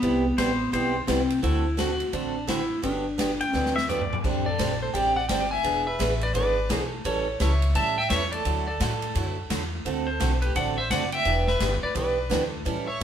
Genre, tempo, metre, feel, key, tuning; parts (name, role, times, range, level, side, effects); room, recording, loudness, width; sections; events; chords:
country, western swing; 171 BPM; 4/4; swing 62% on 8ths; A4 = 442 Hz
clean lap steel guitar; melody; 0.0-13.0 s; B3 to A5; -28 LUFS; left 1 dB
picked steel-string acoustic guitar; accompaniment; 0.0-13.0 s; C3 to A4; -29 LUFS; right 3 dB
upright bass; bass; 0.0-13.0 s; E1 to A2; -29 LUFS; equal
swinging big-band drum kit; drums; 0.0-13.0 s; crash cymbal, hi-hat, kick drum, ride cymbal, snare drum, toms; -32 LUFS; left 2 dB
pedal steel guitar; second line; 0.4-1.0, 3.4-4.2 s; C5 to G5; -28 LUFS; left 3 dB
clear fiddle; second line; 4.5-13.0 s; G4 to E5; -30 LUFS; right 2 dB
moderate studio reverb, RT60 0.9 s; band playing live in one room; -23 LUFS; side -9 dB against mid
0.0-4.2 A section; 4.2-13.0 B section
drum fill 3.5-4.2
0.0 Cmaj7; 1.4 D9; 2.8 Gmaj7; 4.2 D7sus4; 5.6 E7; 7.0 A7; 8.4 Dadd9; 9.9 D7; 11.3 Em7